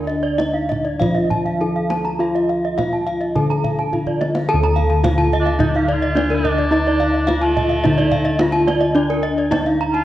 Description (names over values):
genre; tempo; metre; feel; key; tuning
Balinese gamelan; 107 BPM; 4/4; uneven beats; D pelog; A4 = 440 Hz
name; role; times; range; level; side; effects
gamelan-type bronze metallophone; melody; 0.0-10.0 s; D4 to A4-30c; -21 LUFS; left 1 dB; none
gamelan-type bronze metallophone; arpeggios; 0.0-9.9 s; Bb4-20c to Bb5-20c; -25 LUFS; right 5 dB; none
gamelan-type bossed gongs; bass; 0.0-10.0 s; D2 to A4-30c; -20 LUFS; equal; none
gamelan-type bronze metallophone; arpeggios; 0.1-10.0 s; Bb4-20c to Bb5-20c; -23 LUFS; left 2 dB; none
kendang; percussion; 0.1-10.0 s; none; -26 LUFS; right 2 dB; none
warm cor anglais; second line; 5.4-10.0 s; A3-31c to F4-28c; -25 LUFS; right 2 dB; none
room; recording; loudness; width
moderate concert hall reverb, RT60 1.9 s; worn, warbling old tape, cassette tape, warbly pitch drift; -16 LUFS; side -14 dB against mid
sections
0.0-4.5 A section; 4.5-10.0 B section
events
drum fill 3.9-4.5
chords
none